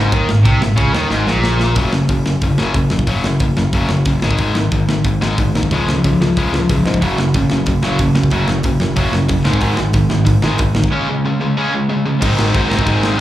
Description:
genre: punk rock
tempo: 184 BPM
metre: 4/4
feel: straight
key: Ab mixolydian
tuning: A4 = 439 Hz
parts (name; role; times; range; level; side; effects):
- cranked stack guitar; riff; 0.0-1.8, 7.0-13.2 s; Gb2 to Db4; -20 LUFS; right 7 dB; overdrive, slapback echo
- tight distorted guitar; riff; 0.0-13.2 s; Gb2 to Eb4; -17 LUFS; left 2 dB; distortion
- modern bright picked electric bass; bass; 0.0-13.2 s; Gb1 to Ab2; -18 LUFS; equal; none
- tight metal drum kit; drums; 0.1-13.1 s; crash cymbal, hi-hat, kick drum, ride cymbal, snare drum; -19 LUFS; equal; none
room: studio reverb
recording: live gig heard through the venue's PA, club reverb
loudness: -13 LUFS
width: side -14 dB against mid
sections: 0.0-1.8 A section; 1.8-12.2 B section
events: drum fill 1.1-1.8; break 10.9-12.2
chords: 0.0 Ab; 1.8 Gb5; 4.2 Ab5; 5.7 Db; 7.0 Gb5; 9.5 Ab5; 10.9 Db5; 12.2 Ab

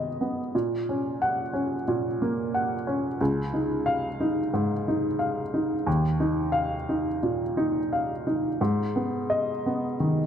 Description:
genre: neoclassical minimalist piano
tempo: 90 BPM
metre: 4/4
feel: rubato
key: Eb minor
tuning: A4 = 441 Hz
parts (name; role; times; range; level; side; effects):
- warm upright piano; solo; 0.0-10.3 s; Db2 to Gb5; -24 LUFS; equal; none
room: moderate scoring stage reverb, RT60 1.5 s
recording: none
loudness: -24 LUFS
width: side -9 dB against mid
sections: 0.0-10.3 A section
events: none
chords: 0.0 Abm; 0.5 Gb/Bb; 3.2 Dbadd9; 5.9 Ebsus2; 8.6 Abm

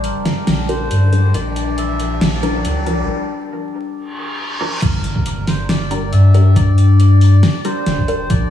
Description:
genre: deep dubstep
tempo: 138 BPM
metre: 4/4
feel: swing 54% on 16ths, half-time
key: G dorian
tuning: A4 = 437 Hz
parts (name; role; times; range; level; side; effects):
- melodica; melody; 0.0-8.5 s; Bb4 to E5; -27 LUFS; equal; dub echo
- overtone-sweeping drone; sustained chords; 0.0-8.5 s; G3 to D4; -24 LUFS; left 3 dB; chorus, built-in reverb, phaser
- soft dub sub bass; bass; 0.0-8.5 s; F1 to G2; -14 LUFS; left 1 dB; none
- deep house drum kit; drums; 0.0-8.4 s; crash cymbal, hi-hat, snare drum; -21 LUFS; equal; none
- riser, reverse cymbal and impact; sound effects; 0.2-6.6 s; none; -27 LUFS; equal; none
- electronic kick drum; drums; 0.3-1.4, 4.8-8.4 s; none; -19 LUFS; equal; overdrive, high-pass filter on kick
- filtered dub chord stab; stabs; 0.7-8.2 s; F3 to Bb4; -25 LUFS; equal; phaser, wide subtle chorus, dub echo
room: moderate lush hall reverb, RT60 1.9 s, digital ambience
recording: dreamy mix soaked in reverb, vinyl crackle, studio ambience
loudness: -13 LUFS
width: side -10 dB against mid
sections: 0.0-4.8 A section; 4.8-8.5 B section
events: build-up 0.0-4.8; riser 0.2-3.1; filter sweep on synth stab 0.0-4.8; break 3.1-4.8; reverse cymbal 4.1-4.8; drop 4.8-8.5; impact 4.8-6.6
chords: 0.0 Gm; 1.3 Bb; 4.8 Gm

